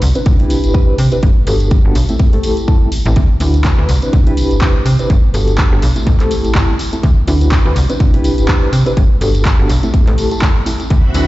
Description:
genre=filtered disco house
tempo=124 BPM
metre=4/4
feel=swing 56% on 16ths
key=G major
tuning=A4 = 440 Hz
part: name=slap-like FM bass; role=bass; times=0.0-11.3 s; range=G1 to C3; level=-14 LUFS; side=equal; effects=sidechain pumping, low-pass filter
part: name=punchy analog drum machine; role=drums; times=0.0-11.3 s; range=handclaps, hi-hat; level=-23 LUFS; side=equal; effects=sidechain pumping on hats
part: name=tambourine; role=percussion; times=0.0-11.3 s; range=none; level=-31 LUFS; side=left 1 dB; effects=sidechain pumping on perc, low-pass filter on perc
part: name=reed electric piano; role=accompaniment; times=0.1-11.3 s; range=A3 to B4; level=-18 LUFS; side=equal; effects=fast tremolo, phaser, sidechain pumping, low-pass filter
part: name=electronic kick drum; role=drums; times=0.3-11.0 s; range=none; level=-12 LUFS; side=equal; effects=none
part: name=string machine, full ensemble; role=sustained chords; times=10.9-11.3 s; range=C4 to B5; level=-19 LUFS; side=right 1 dB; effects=ensemble chorus, sidechain pumping, low-pass filter
room=digital ambience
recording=played on a big sound system in a bare room, large studio reverb, nothing above 7.8 kHz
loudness=-10 LUFS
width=side -17 dB against mid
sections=0.0-11.3 A section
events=none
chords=0.0 Cmaj9; 1.2 Gmaj9; 2.2 Am7; 3.2 D13; 3.9 Cmaj9; 5.1 Gmaj9; 6.1 Am7; 7.0 D13; 7.8 Cmaj9; 9.0 Gmaj9; 9.9 Am7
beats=0.26 0.74 | 1.23 1.71 2.20 2.68 | 3.16 3.65 4.13 4.62 | 5.10 5.58 6.07 6.55 | 7.04 7.52 8.00 8.49 | 8.97 9.45 9.94 10.42 | 10.91

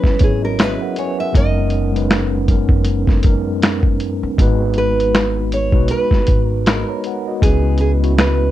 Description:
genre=lo-fi hip hop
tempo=79 BPM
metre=4/4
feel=swing 56% on 16ths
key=G# minor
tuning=A4 = 438 Hz
part: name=nylon-string guitar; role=melody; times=0.0-8.5 s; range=G#4 to E5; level=-21 LUFS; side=right 2 dB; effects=none
part: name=mellow tine electric piano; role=accompaniment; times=0.0-8.5 s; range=F#2 to B5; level=-20 LUFS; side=equal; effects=medium stereo tremolo, cassette tape
part: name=lo-fi sampler-style drum kit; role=drums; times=0.0-8.4 s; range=finger snaps, hi-hat, kick drum, snare drum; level=-15 LUFS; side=equal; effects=none
part: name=upright bass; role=bass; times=0.2-8.5 s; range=F#1 to C#2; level=-19 LUFS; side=equal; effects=none
room=light reverb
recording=dark, warm production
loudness=-14 LUFS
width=side -13 dB against mid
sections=0.0-8.5 A section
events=none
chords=0.0 F#7sus4; 1.3 Bmaj13/F#; 4.4 G#m9; 7.4 C#m7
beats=0.59 | 1.35 2.10 2.87 3.62 | 4.38 5.14 5.90 6.66 | 7.42 8.18

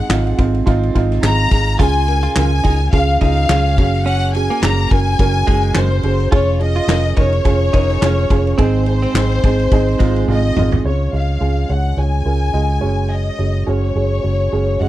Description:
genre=piano-driven pop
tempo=106 BPM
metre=4/4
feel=swing 56% on 16ths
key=Db major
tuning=A4 = 440 Hz
part: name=warm studio violin section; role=melody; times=0.0-14.9 s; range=C5 to Bb5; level=-21 LUFS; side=left 3 dB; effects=none
part: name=dark upright piano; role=accompaniment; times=0.0-14.9 s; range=Ab2 to Eb5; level=-20 LUFS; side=right 5 dB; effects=none
part: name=vintage muted fingered electric bass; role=bass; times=0.1-14.9 s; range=F1 to Db2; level=-17 LUFS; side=equal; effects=none
part: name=loose indie drum kit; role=drums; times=0.1-10.8 s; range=crash cymbal, handclaps, hi-hat, kick drum, ride cymbal, snare drum, toms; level=-18 LUFS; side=equal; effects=none
part: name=direct-recorded clean electric guitar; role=riff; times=1.8-10.4 s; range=Ab3 to F4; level=-25 LUFS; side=right 5 dB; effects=wide subtle chorus
room=small room ambience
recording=none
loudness=-13 LUFS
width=side -14 dB against mid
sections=0.0-10.8 A section; 10.8-14.9 B section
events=drum fill 10.3-10.8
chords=0.0 Ab; 1.8 Db; 3.8 Gbsus2; 6.3 Db/F; 8.6 Ab; 10.8 Db; 12.8 Gbsus2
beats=0.10 0.67 1.23 | 1.80 2.36 2.93 3.50 | 4.06 4.62 5.19 5.75 | 6.32 6.89 7.45 8.02 | 8.58 9.15 9.71 10.28 | 10.84 11.41 11.97 12.54 | 13.11 13.67 14.24 14.80

